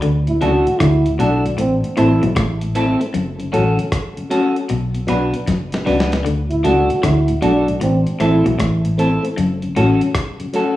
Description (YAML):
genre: roots reggae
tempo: 77 BPM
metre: 4/4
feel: swing 65% on 16ths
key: D major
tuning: A4 = 439 Hz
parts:
  - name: electric guitar at the edge of break-up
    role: riff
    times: 0.0-9.9 s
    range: F#2 to D3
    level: -22 LUFS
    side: left 3 dB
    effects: none
  - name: vintage muted fingered electric bass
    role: bass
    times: 0.0-10.0 s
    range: F#1 to D2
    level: -19 LUFS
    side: equal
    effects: none
  - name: dusty soul sampler-style drum kit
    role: drums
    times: 0.0-10.8 s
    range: hi-hat, kick drum, rim click, snare drum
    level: -24 LUFS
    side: equal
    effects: none
  - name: dark trombone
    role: second line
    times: 0.3-8.5 s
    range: C4 to F#4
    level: -19 LUFS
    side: right 1 dB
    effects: tape echo, plate reverb
  - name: mellow tonewheel organ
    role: accompaniment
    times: 0.3-10.6 s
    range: D2 to D4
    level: -25 LUFS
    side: left 1 dB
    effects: slow rotary speaker, tape echo, plate reverb
  - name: clean electric guitar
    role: accompaniment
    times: 0.4-10.8 s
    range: C4 to B4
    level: -20 LUFS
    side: equal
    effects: wide subtle chorus, tape echo, plate reverb
room: wet small room reverb, RT60 0.6 s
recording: rough home demo mix, studio reverb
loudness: -14 LUFS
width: side -15 dB against mid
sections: 0.0-10.8 A section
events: drum fill 5.5-6.3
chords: 0.0 D; 1.6 Am; 3.1 F#m; 4.7 Bm; 6.3 D; 7.8 Am; 9.4 F#m